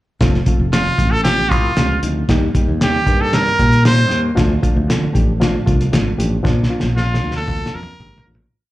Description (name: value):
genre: uptempo 1960s-style soul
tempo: 116 BPM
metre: 4/4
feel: straight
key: F mixolydian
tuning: A4 = 445 Hz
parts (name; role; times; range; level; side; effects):
- reed electric piano; accompaniment; 0.2-8.4 s; F3 to Bb4; -22 LUFS; left 2 dB; slapback echo
- fingered electric bass; bass; 0.2-8.5 s; F1 to D3; -17 LUFS; equal; none
- cloth-damped thuddy drum kit; drums; 0.2-8.5 s; hi-hat, kick drum, snare drum, toms; -18 LUFS; equal; none
- brilliant trumpet; melody; 0.7-8.3 s; F4 to C5; -19 LUFS; right 1 dB; slapback echo
room: small room reverb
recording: live gig heard through the venue's PA, club reverb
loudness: -13 LUFS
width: side -16 dB against mid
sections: 0.2-8.5 verse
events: fade-out 6.4-8.5; drum fill 6.4-8.5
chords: 0.2 F; 2.3 Eb; 4.4 Dm; 6.4 Bb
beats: | 0.21 0.73 1.25 1.77 | 2.29 2.81 3.33 3.85 | 4.37 4.89 5.41 5.93 | 6.45 6.97 7.49 8.00